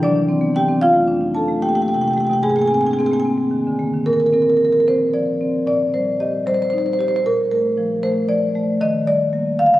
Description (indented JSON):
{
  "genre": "classical, contemporary piece for solo marimba",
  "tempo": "76 BPM (dotted quarters)",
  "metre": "6/8",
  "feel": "rubato",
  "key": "Bb major",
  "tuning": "A4 = 439 Hz",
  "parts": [
    { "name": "marimba with medium mallets", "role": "solo", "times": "0.0-9.8 s", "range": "F2 to A5", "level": "-16 LUFS", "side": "equal", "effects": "none" }
  ],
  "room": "wet concert hall reverb, RT60 2.5 s",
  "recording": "recorded on a phone in the room, club reverb, compression",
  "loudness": "-16 LUFS",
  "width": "side -15 dB against mid",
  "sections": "0.0-4.1 A section; 4.1-9.8 B section",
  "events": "none",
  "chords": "0.0 Cadd9; 0.8 F69; 2.4 Abadd9; 4.1 Bbadd9; 5.7 Bb69; 7.3 Bbmaj7; 8.8 Ebmaj7",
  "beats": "0.02 | 0.80 1.60 | 2.43 3.26 | 4.08 4.88 | 5.68 6.47 | 7.25 8.03 | 8.81 9.59"
}